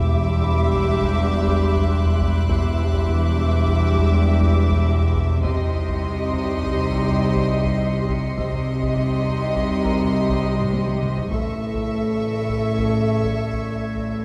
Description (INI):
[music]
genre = cinematic, suspense film score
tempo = 102 BPM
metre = 5/4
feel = straight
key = unclear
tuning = A4 = 440 Hz
[part]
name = warm chamber violin section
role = melody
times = 0.0-14.2 s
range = C6 to D6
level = -36 LUFS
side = equal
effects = none
[part]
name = warm symphonic violin section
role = second line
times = 0.0-14.2 s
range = Eb5 to E5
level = -32 LUFS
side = equal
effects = none
[part]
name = dark symphonic viola section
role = accompaniment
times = 0.0-14.2 s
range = G4 to A4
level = -31 LUFS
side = equal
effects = none
[part]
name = mellow French horn section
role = sustained chords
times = 0.0-14.2 s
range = C#3 to Eb4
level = -30 LUFS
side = equal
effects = none
[part]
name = marimba with medium mallets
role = riff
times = 0.0-14.1 s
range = E2 to C4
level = -25 LUFS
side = equal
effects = none
[part]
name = rich symphonic cello section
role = bass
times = 0.0-14.2 s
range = E2 to C3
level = -30 LUFS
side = equal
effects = none
[part]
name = rich symphonic double bass section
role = bass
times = 0.0-14.2 s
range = E1 to C2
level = -29 LUFS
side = equal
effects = none
[part]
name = warm symphonic violin section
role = texture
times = 0.0-14.2 s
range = D5 to C#7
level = -41 LUFS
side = equal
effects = none
[part]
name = taiko ensemble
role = drums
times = 0.1-14.2 s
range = none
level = -30 LUFS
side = equal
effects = none
[part]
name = celesta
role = texture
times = 0.4-14.2 s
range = A#4 to Eb6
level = -40 LUFS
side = equal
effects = none
[sound]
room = wet scoring stage reverb, RT60 2.0 s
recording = heard from further back in the room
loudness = -21 LUFS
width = mono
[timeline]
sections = 0.0-14.2 A section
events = drum fill 10.6-11.3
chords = 0.0 Em7; 5.4 Cm; 11.3 A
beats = 0.14 0.73 1.32 1.91 | 2.49 3.08 3.67 4.26 4.85 | 5.43 6.02 6.61 7.20 7.79 | 8.38 8.96 9.55 10.14 10.73 | 11.32 11.90 12.49 13.08 13.67